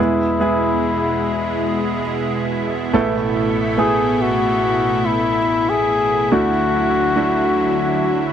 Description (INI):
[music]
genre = pop ballad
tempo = 71 BPM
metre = 4/4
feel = straight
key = unclear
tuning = A4 = 441 Hz
[part]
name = warm flugelhorn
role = melody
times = 0.0-8.3 s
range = E4 to G#4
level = -19 LUFS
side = left 4 dB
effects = none
[part]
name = clear concert grand piano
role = accompaniment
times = 0.0-8.3 s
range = A1 to A4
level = -20 LUFS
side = right 3 dB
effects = none
[part]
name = lush unison pad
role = sustained chords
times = 0.0-8.3 s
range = B2 to E4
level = -22 LUFS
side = right 1 dB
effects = chorus
[sound]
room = light reverb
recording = dry, close 1970s-style studio recording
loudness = -16 LUFS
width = side -9 dB against mid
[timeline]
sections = 0.0-8.3 A section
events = none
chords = 0.0 E; 2.9 Asus2; 6.3 Dadd9